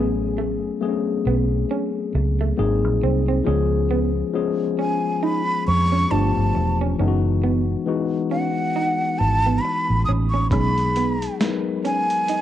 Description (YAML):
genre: R&B, neo-soul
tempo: 68 BPM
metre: 4/4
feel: swing 58% on 16ths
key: unclear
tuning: A4 = 442 Hz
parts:
  - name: electric guitar through a small old amp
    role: second line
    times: 0.0-12.4 s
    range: A3 to D#4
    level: -27 LUFS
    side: right 8 dB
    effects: analog chorus, cassette tape
  - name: tine electric piano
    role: accompaniment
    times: 0.0-12.4 s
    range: E3 to B4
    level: -23 LUFS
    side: left 6 dB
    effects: cassette tape
  - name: vintage muted fingered electric bass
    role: bass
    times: 0.0-11.3 s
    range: E1 to E#2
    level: -21 LUFS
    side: right 1 dB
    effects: none
  - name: breathy mellow silver concert flute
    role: melody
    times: 4.8-12.4 s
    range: F#5 to D#6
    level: -23 LUFS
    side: right 1 dB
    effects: cassette tape
  - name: boom bap sampler-style drum kit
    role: drums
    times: 10.5-12.4 s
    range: hi-hat, kick drum, snare drum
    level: -25 LUFS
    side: right 1 dB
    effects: overdrive, cassette tape
room: light reverb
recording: home recording on cassette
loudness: -19 LUFS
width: side -11 dB against mid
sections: 0.0-12.4 A section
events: none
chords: 0.0 Amaj13; 2.6 G#9; 3.5 C#7; 6.1 G9; 7.0 F#13sus4; 10.5 B6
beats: 0.80 1.69 2.57 | 3.45 4.33 5.21 6.10 | 6.98 7.86 8.74 9.63 | 10.51 11.39 12.27